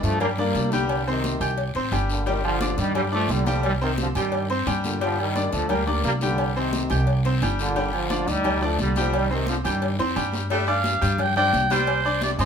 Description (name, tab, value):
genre	latin, salsa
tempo	175 BPM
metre	4/4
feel	straight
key	G minor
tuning	A4 = 437 Hz
part	bright trombone section	melody	0.0-10.0 s	G2 to Eb4	-26 LUFS	right 1 dB	none
part	bright grand piano	accompaniment	0.0-12.5 s	G3 to G6	-27 LUFS	left 3 dB	none
part	upright bass	bass	0.0-12.5 s	G1 to G2	-26 LUFS	equal	none
part	agogo bells and timbales	percussion	0.0-12.5 s	none	-34 LUFS	right 10 dB	none
part	congas	percussion	0.0-12.5 s	none	-34 LUFS	left 1 dB	none
part	cowbell	percussion	0.0-12.5 s	none	-34 LUFS	left 5 dB	none
part	guiro	percussion	0.0-12.5 s	none	-35 LUFS	left 4 dB	none
part	clear saxophone section	second line	10.5-12.4 s	C3 to A3	-31 LUFS	right 1 dB	none
part	warm oboe	melody	10.7-12.5 s	C5 to G5	-22 LUFS	right 1 dB	none
room	moderate studio reverb, RT60 0.8 s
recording	band playing live in one room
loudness	-21 LUFS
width	side -7 dB against mid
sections	0.0-10.5 A section; 10.5-12.5 B section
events	drum fill 9.6-10.5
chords	0.0 Gm; 0.9 Cm; 2.3 G5; 3.6 Cm; 5.0 G5; 6.4 Cm; 7.8 G5; 9.1 Cm; 10.5 G5